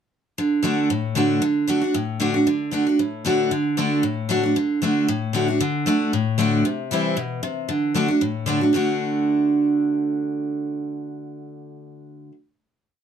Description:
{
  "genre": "bluegrass",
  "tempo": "230 BPM",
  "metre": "4/4",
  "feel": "swing 55% on 8ths",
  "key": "D mixolydian",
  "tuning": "A4 = 440 Hz",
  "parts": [
    { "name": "picked steel-string acoustic guitar", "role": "solo", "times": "0.4-12.3 s", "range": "A2 to F#4", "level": "-20 LUFS", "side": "equal", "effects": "none" }
  ],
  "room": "light reverb",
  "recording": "close, detailed microphones",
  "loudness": "-19 LUFS",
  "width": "side -8 dB against mid",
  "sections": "0.4-8.7 A section; 8.7-10.8 final chord",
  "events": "none",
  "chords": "0.4 D; 6.6 C; 7.7 D"
}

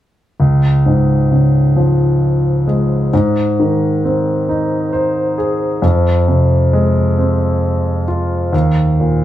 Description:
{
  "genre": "pop",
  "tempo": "44 BPM (dotted quarters)",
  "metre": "6/8",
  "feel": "straight",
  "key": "unclear",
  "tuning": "A4 = 440 Hz",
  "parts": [
    { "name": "warm concert grand piano", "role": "accompaniment", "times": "0.4-9.2 s", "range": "Db2 to C5", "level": "-12 LUFS", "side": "equal", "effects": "none" }
  ],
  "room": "moderate studio reverb, RT60 0.5 s",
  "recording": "band playing live in one room",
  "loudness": "-12 LUFS",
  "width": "side -13 dB against mid",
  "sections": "0.4-9.2 A section",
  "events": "grand piano fill 4.5-5.8",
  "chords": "0.4 Db; 3.1 Ab; 5.8 Fm; 8.5 Eb5"
}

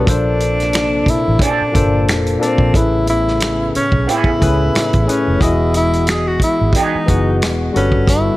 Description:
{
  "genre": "R&B, neo-soul",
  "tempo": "90 BPM",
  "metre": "4/4",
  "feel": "swing 55% on 16ths",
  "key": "unclear",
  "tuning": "A4 = 440 Hz",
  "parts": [
    { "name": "mellow tenor saxophone", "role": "melody", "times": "0.0-8.4 s", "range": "B#3 to G#4", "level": "-18 LUFS", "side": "equal", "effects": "slapback echo" },
    { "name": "barky tine electric piano", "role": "accompaniment", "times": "0.0-8.4 s", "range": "A2 to F#5", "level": "-19 LUFS", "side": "left 3 dB", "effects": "none" },
    { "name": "warm analog pad", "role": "sustained chords", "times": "0.0-8.4 s", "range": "B#2 to D#5", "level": "-27 LUFS", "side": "right 1 dB", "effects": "none" },
    { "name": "vintage muted fingered electric bass", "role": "bass", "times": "0.0-8.3 s", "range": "E1 to C#2", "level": "-18 LUFS", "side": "equal", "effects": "none" },
    { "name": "warm soul drum kit", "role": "drums", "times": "0.1-8.2 s", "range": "finger snaps, hi-hat, kick drum, snare drum", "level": "-18 LUFS", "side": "equal", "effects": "none" },
    { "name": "electric guitar through a small old amp", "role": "second line", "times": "1.4-7.0 s", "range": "E3 to A4", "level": "-22 LUFS", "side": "right 6 dB", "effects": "wah, spring reverb" }
  ],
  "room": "small room ambience",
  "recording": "none",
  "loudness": "-13 LUFS",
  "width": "side -17 dB against mid",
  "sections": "0.0-8.4 A section",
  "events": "none",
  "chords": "0.1 A#maj9; 2.7 Amaj9; 5.4 Emaj9; 7.7 Gmaj9"
}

